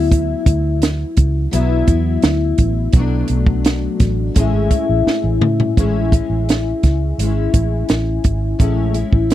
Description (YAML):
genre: indie pop, bedroom pop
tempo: 85 BPM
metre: 4/4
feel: straight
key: A major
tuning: A4 = 440 Hz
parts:
  - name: picked steel-string acoustic guitar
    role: accompaniment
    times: 0.0-9.3 s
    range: A2 to E4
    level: -19 LUFS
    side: left 4 dB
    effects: analog chorus, warbly pitch drift
  - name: vintage muted fingered electric bass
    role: bass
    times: 0.0-9.3 s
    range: G#1 to A2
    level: -18 LUFS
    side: right 1 dB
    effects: none
  - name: compact cocktail drum kit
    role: drums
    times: 0.1-9.3 s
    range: hi-hat, kick drum, snare drum, toms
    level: -14 LUFS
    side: right 1 dB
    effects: none
room: little or no reverb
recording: dry, close 1970s-style studio recording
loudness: -14 LUFS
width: side -13 dB against mid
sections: 0.0-5.8 A section; 5.8-9.3 B section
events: drum fill 5.1-5.8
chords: 0.0 D69; 2.9 Bm7; 4.4 Amaj7